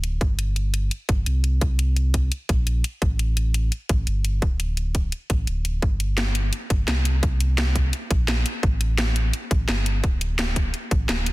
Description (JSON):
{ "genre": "liquid drum and bass", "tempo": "171 BPM", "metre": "4/4", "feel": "straight", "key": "G minor", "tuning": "A4 = 440 Hz", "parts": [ { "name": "sub bass with octave", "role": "bass", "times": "0.0-11.3 s", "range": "D1 to C2", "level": "-22 LUFS", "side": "equal", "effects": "tube saturation" }, { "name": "drum and bass drum kit", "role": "drums", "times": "0.0-11.3 s", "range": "hi-hat, snare drum", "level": "-27 LUFS", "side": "left 1 dB", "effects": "overdrive, small room ambience" }, { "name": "electronic kick drum", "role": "drums", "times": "0.2-11.0 s", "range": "none", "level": "-22 LUFS", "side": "equal", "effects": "overdrive, small room ambience" } ], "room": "digital ambience", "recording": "dense, heavily limited modern master", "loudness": "-20 LUFS", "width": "side -19 dB against mid", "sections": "0.0-11.3 A section", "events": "none", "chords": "none" }